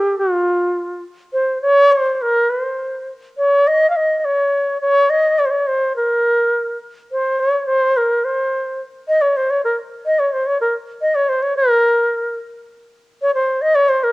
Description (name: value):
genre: indian classical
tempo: 105 BPM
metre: 5/4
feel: uneven beats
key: unclear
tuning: A4 = 443 Hz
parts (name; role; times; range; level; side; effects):
- bright bansuri; solo; 0.0-14.1 s; F4 to F5; -14 LUFS; equal; none
room: moderate spring reverb, RT60 1.6 s, small room ambience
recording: home recording on cassette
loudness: -15 LUFS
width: side -22 dB against mid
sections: 0.2-11.6 A section; 11.6-14.1 B section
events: speeding up 0.0-14.1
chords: none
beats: | 0.16 0.75 1.33 1.92 2.50 | 3.08 3.67 4.24 4.82 5.39 | 5.97 6.54 7.11 7.67 8.24 | 8.80 9.36 9.92 10.47 11.03 | 11.58 12.13 12.68 13.23 13.77